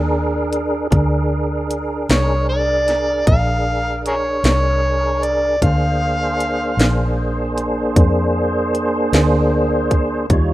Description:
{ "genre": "slow blues", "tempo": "51 BPM (dotted quarters)", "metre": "12/8", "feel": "straight", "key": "Bb mixolydian", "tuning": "A4 = 442 Hz", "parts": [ { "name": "tonewheel organ", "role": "sustained chords", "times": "0.0-10.5 s", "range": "G3 to Db5", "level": "-20 LUFS", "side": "right 1 dB", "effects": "slow rotary speaker, chorus vibrato" }, { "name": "vintage muted fingered electric bass", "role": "bass", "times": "0.0-10.5 s", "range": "Bb1 to F2", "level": "-20 LUFS", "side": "equal", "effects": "none" }, { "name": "garage drum kit", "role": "drums", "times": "0.5-10.5 s", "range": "hi-hat, kick drum, snare drum", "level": "-17 LUFS", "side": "equal", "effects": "none" }, { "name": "overdriven harmonica", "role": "melody", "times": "2.1-7.1 s", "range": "Ab4 to F5", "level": "-19 LUFS", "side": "equal", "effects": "none" } ], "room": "light reverb, digital ambience", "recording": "rough home demo mix", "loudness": "-15 LUFS", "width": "side -16 dB against mid", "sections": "0.0-10.5 A section", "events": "none", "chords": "0.0 Bb9" }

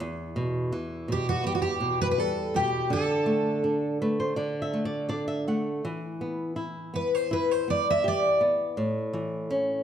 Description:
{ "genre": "fado-style ballad", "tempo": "82 BPM", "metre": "4/4", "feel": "rubato", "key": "unclear", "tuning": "A4 = 440 Hz", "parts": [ { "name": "flamenco guitar", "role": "accompaniment", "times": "0.0-9.8 s", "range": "E2 to F#5", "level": "-28 LUFS", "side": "equal", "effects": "none" }, { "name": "picked twelve-string acoustic guitar", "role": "melody", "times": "1.1-8.4 s", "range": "F#4 to E5", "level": "-25 LUFS", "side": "equal", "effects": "slapback echo" } ], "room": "moderate recital hall reverb, RT60 1.6 s", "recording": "dark, warm production", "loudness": "-25 LUFS", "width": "side -9 dB against mid", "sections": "0.0-9.8 A section", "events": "nylon-string guitar fill 3.6-5.8", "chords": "0.0 Em; 2.9 D5; 5.8 Em; 8.8 A" }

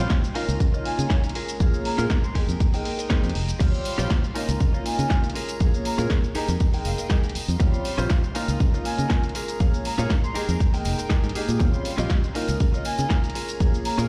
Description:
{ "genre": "filtered disco house", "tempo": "120 BPM", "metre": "4/4", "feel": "straight", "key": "F minor", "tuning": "A4 = 437 Hz", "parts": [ { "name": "clear grand piano", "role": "accompaniment", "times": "0.0-14.1 s", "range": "G3 to G5", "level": "-33 LUFS", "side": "equal", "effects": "phaser, sidechain pumping" }, { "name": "warm chamber string section", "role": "sustained chords", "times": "0.0-14.1 s", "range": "Ab3 to C6", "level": "-40 LUFS", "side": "equal", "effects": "vintage 12-bit sampler grit, sidechain pumping" }, { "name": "direct-recorded clean electric guitar", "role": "riff", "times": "0.0-14.1 s", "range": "Db4 to Eb5", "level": "-35 LUFS", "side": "equal", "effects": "sidechain pumping" }, { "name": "fingered electric bass", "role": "bass", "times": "0.0-14.1 s", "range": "F1 to Db3", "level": "-28 LUFS", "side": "equal", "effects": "sidechain pumping" }, { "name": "electronic kick drum", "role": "drums", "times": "0.1-13.7 s", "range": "none", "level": "-24 LUFS", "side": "equal", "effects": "studio reverb" }, { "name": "punchy analog drum machine", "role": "drums", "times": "0.1-14.1 s", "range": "crash cymbal, hi-hat, shaker, snare drum", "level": "-35 LUFS", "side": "equal", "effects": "studio reverb" }, { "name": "mellow jazz flute", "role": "melody", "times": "0.9-14.0 s", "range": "F5 to C6", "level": "-35 LUFS", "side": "equal", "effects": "sidechain pumping" }, { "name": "tambourine", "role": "percussion", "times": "3.6-14.1 s", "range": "none", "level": "-46 LUFS", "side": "equal", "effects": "sidechain pumping on perc" } ], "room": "light reverb, small room ambience", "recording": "played on a big sound system in a bare room, stone room reverb", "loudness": "-23 LUFS", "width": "mono", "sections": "0.0-14.1 A section", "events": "none", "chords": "0.4 Db69; 1.4 Bbm7; 2.4 Fm11; 3.6 Eb13 (rootless); 4.4 Db69; 5.4 Bbm7; 6.4 Fm11; 7.6 Eb13 (rootless); 8.4 Db69; 9.4 Bbm7; 10.4 Fm11; 11.6 Eb13; 12.4 Db69; 13.4 Bbm7" }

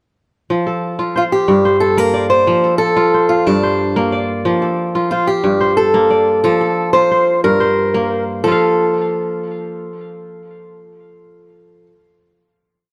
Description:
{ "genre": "west african traditional, West African string and xylophone music", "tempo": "121 BPM (dotted quarters)", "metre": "12/8", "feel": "straight", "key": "F major", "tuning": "A4 = 439 Hz", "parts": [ { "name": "kora", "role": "arpeggios", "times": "0.5-12.0 s", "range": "G2 to F5", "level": "-19 LUFS", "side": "equal", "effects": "tape echo" }, { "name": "fingerpicked swing-style acoustic guitar", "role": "melody", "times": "1.2-11.9 s", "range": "D4 to C5", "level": "-17 LUFS", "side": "equal", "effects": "none" } ], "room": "moderate plate reverb, RT60 3.1 s", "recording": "none", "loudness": "-15 LUFS", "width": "mono", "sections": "0.5-8.4 A section; 8.4-12.4 final chord", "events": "none", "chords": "0.5 F; 1.5 Gm; 2.5 F; 3.5 Gm; 4.5 F; 5.5 Gm; 6.4 F; 7.4 Gm; 8.4 N.C." }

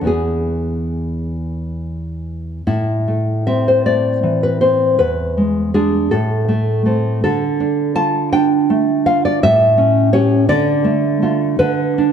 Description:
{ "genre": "romantic piece for solo classical guitar", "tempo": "44-57 BPM (dotted quarters)", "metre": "6/8", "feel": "rubato", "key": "A minor", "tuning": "A4 = 440 Hz", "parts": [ { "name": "nylon-string guitar", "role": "solo", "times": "0.0-12.1 s", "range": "E2 to A5", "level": "-14 LUFS", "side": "equal", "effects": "none" } ], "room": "wet recital hall reverb, RT60 1.8 s", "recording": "dark, warm production", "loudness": "-14 LUFS", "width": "side -8 dB against mid", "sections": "0.0-2.7 A section; 2.7-12.1 B section", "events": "none", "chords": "0.1 E; 2.7 Am; 5.0 E7; 6.1 Am; 7.3 Dm; 9.4 A7; 10.5 Dm; 11.6 E7(no3)/D (rootless)" }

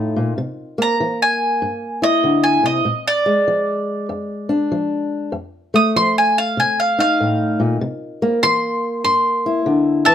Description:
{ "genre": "acoustic country blues, solo or duo", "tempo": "97 BPM", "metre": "4/4", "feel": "swing 64% on 8ths", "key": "unclear", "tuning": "A4 = 440 Hz", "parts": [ { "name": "mandolin", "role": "melody", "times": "0.0-10.1 s", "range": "F4 to Eb6", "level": "-17 LUFS", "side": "right 1 dB", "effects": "none" }, { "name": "fingerpicked old ladder-braced acoustic guitar", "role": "accompaniment", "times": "0.0-10.1 s", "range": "F2 to E4", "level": "-19 LUFS", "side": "left 2 dB", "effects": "none" } ], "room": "light reverb", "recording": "none", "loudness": "-16 LUFS", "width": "side -9 dB against mid", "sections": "0.0-10.1 A section", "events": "mandolin solo 0.0-10.1", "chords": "0.4 C7; 2.9 Bb7; 5.3 F7; 7.8 C7" }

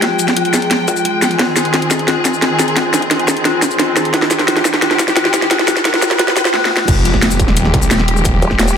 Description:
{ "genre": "dark technical drum and bass", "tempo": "175 BPM", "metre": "4/4", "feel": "straight", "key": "F minor", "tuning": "A4 = 441 Hz", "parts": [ { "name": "rich studio string section", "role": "sustained chords", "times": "0.0-8.8 s", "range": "Eb3 to G5", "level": "-19 LUFS", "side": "equal", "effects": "sidechain pumping, low-pass filter" }, { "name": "dark detuned synth bell", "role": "arpeggios", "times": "0.0-6.8 s", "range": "F4 to Ab4", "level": "-19 LUFS", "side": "left 3 dB", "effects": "chorus, sidechain pumping, low-pass filter, ping-pong delay" }, { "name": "drum and bass drum kit", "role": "drums", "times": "0.0-8.7 s", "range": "crash cymbal, hi-hat, shaker, snare drum", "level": "-14 LUFS", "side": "equal", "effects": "overdrive, studio reverb" }, { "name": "electronic kick drum", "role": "drums", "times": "0.0-8.6 s", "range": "none", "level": "-20 LUFS", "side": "equal", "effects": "distortion, high-pass filter on kick, studio reverb" }, { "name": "riser and impact", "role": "sound effects", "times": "3.0-8.3 s", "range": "none", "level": "-24 LUFS", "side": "right 1 dB", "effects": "none" }, { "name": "snarling distorted saw bass", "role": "bass", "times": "6.9-8.4 s", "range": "Eb1 to C2", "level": "-16 LUFS", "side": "equal", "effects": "distortion, overdrive, sidechain pumping" }, { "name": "vowel-sweep wobble bass", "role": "bass", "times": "8.4-8.8 s", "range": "Eb1", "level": "-16 LUFS", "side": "equal", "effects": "chorus" } ], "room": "moderate plate reverb, RT60 2.2 s", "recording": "dense, heavily limited modern master, high-pass filter", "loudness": "-11 LUFS", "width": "side -7 dB against mid", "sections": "0.0-6.9 A section; 6.9-8.8 B section", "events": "build-up 0.0-6.9; drum fill 0.0-6.5, 6.5-6.9; drop 6.9-8.8; impact 6.9-8.3", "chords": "0.0 Fmadd9" }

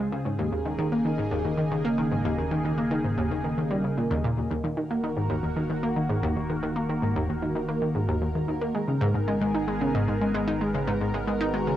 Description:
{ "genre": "ambient, sequencer-driven space music", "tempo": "113 BPM", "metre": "4/4", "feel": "straight", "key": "Eb minor from 4.5 s", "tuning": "A4 = 440 Hz", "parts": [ { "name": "lush unison pad", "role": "sustained chords", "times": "0.0-11.8 s", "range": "Db3 to Bb4", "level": "-30 LUFS", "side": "equal", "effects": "chorus, phaser, cassette tape" }, { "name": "analog pluck", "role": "riff", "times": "0.0-11.8 s", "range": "Eb2 to Eb4", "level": "-26 LUFS", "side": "equal", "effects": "chorus, cassette tape, ping-pong delay" }, { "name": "warm sub bass", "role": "bass", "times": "0.0-11.8 s", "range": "Eb1 to Db2", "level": "-43 LUFS", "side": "equal", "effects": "none" } ], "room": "wet booth ambience, RT60 0.2 s", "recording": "home recording on cassette", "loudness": "-24 LUFS", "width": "side -12 dB against mid", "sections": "0.0-4.5 A section; 4.5-11.8 B section", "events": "none", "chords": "0.3 Eb7sus4; 4.5 Ebm; 8.8 Abmadd9" }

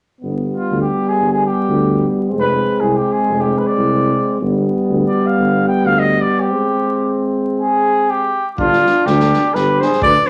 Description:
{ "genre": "balkan folk, Balkan brass band", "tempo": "free time", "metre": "none", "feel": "none", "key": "unclear", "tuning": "A4 = 441 Hz", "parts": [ { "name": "dark euphonium", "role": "accompaniment", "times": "0.2-10.3 s", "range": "G3 to B3", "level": "-22 LUFS", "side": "equal", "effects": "none" }, { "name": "warm French horn", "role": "accompaniment", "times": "0.2-10.3 s", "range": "B3 to D4", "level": "-24 LUFS", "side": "equal", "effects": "none" }, { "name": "mellow tuba", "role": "bass", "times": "0.2-10.2 s", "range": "F1 to D2", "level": "-22 LUFS", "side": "equal", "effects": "none" }, { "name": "mellow trumpet", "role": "melody", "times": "0.6-10.3 s", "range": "F4 to G5", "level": "-19 LUFS", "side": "equal", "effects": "none" }, { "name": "breathy flugelhorn", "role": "second line", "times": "8.6-10.3 s", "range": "D4 to B4", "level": "-24 LUFS", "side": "equal", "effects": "none" }, { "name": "unplugged drum kit", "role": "percussion", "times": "8.6-10.3 s", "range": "kick drum, snare drum", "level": "-28 LUFS", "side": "equal", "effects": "none" } ], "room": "wet large studio reverb, RT60 0.8 s", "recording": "vinyl crackle", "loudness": "-16 LUFS", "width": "mono", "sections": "0.2-8.6 A section; 8.6-10.3 B section", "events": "break 6.5-8.6", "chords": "0.2 G; 2.3 Fm; 4.4 G; 6.5 Abmaj7; 8.6 G" }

